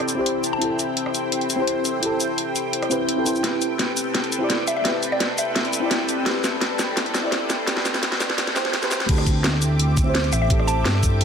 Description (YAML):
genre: liquid drum and bass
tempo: 170 BPM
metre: 4/4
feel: straight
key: unclear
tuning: A4 = 442 Hz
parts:
  - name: mellow FM electric piano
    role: accompaniment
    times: 0.0-11.2 s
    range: C4 to D5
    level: -25 LUFS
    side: left 1 dB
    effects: chorus, phaser, dub echo
  - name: lush unison pad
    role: sustained chords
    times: 0.0-11.2 s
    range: C4 to D6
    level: -28 LUFS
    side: equal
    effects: chorus, phaser, sidechain pumping
  - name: drum and bass drum kit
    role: drums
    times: 0.0-11.2 s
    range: crash cymbal, hi-hat, rim click, shaker, snare drum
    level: -23 LUFS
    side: equal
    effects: none
  - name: mallet-like synth pluck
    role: melody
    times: 0.5-0.8, 4.7-5.7, 10.3-10.9 s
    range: D5 to A5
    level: -29 LUFS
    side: equal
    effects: chorus, phaser, dub echo
  - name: smooth synth bass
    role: bass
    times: 9.1-11.2 s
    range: A1 to G2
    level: -20 LUFS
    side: equal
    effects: tube saturation
  - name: electronic kick drum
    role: drums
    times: 9.1-11.1 s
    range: none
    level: -21 LUFS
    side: equal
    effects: none
room: moderate lush hall reverb, RT60 1.8 s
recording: dense, heavily limited modern master, high-pass filter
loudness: -19 LUFS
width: side -7 dB against mid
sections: 0.0-9.1 A section; 9.1-11.2 B section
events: build-up 0.0-9.1; drum fill 3.4-9.1; drop 9.1-11.2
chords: 0.0 D9sus4